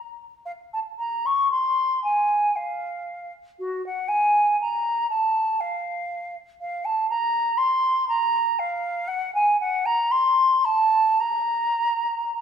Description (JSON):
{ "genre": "classical, baroque-style fantasia for unaccompanied flute", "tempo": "107-124 BPM", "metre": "3/4", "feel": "rubato", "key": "Bb minor", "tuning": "A4 = 440 Hz", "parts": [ { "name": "mellow hollow silver concert flute", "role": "solo", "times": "0.5-12.4 s", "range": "Gb4 to Db6", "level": "-21 LUFS", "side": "equal", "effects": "none" } ], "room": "moderate recital hall reverb, RT60 1.4 s", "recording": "minimal, uncompressed stereo recording", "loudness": "-20 LUFS", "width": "side -8 dB against mid", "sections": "0.5-12.4 A section", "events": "none", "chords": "none" }